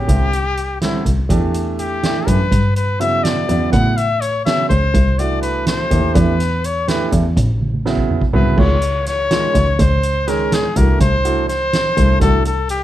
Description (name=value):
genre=progressive instrumental, band music in an uneven meter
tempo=248 BPM (eighths)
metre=5/8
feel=straight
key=unclear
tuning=A4 = 445 Hz
part: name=clear trumpet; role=melody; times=0.0-12.8 s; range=E4 to F#5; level=-19 LUFS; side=left 3 dB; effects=none
part: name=clear concert grand piano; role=accompaniment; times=0.0-12.4 s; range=C#3 to G#4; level=-21 LUFS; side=right 4 dB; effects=none
part: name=rich double bass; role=bass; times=0.0-12.8 s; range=A1 to A2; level=-17 LUFS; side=equal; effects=none
part: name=soft-mallet drum kit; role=drums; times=0.1-12.8 s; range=crash cymbal, hi-hat, kick drum, snare drum, toms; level=-20 LUFS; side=right 1 dB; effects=none
room=light reverb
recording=none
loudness=-14 LUFS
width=side -13 dB against mid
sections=0.0-8.6 A section; 8.6-12.8 B section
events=trumpet solo 0.0-8.6; drum fill 7.6-8.6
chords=0.1 Cadd9; 1.3 Em; 2.5 G; 3.7 Aadd9; 5.0 Cadd9; 6.2 Em; 7.4 A; 8.6 C#; 11.0 C